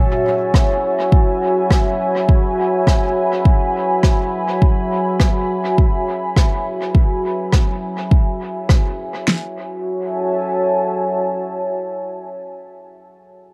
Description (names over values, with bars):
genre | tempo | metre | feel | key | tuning
ambient dub | 103 BPM | 4/4 | swing 56% on 16ths | F# minor | A4 = 440 Hz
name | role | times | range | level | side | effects
deep dark ambient pad | sustained chords | 0.0-12.4 s | F#4 to B5 | -21 LUFS | equal | chorus, built-in reverb
deep house drum kit | drums | 0.5-9.4 s | kick drum, snare drum | -16 LUFS | equal | none
rim click | drums | 0.5-8.8 s | none | -29 LUFS | equal | dub echo
room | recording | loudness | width
moderate spring reverb, RT60 1.7 s | none | -18 LUFS | mono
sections
0.0-9.3 A section; 9.3-11.6 B section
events
none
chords
0.0 F#7(no3); 9.3 F#m7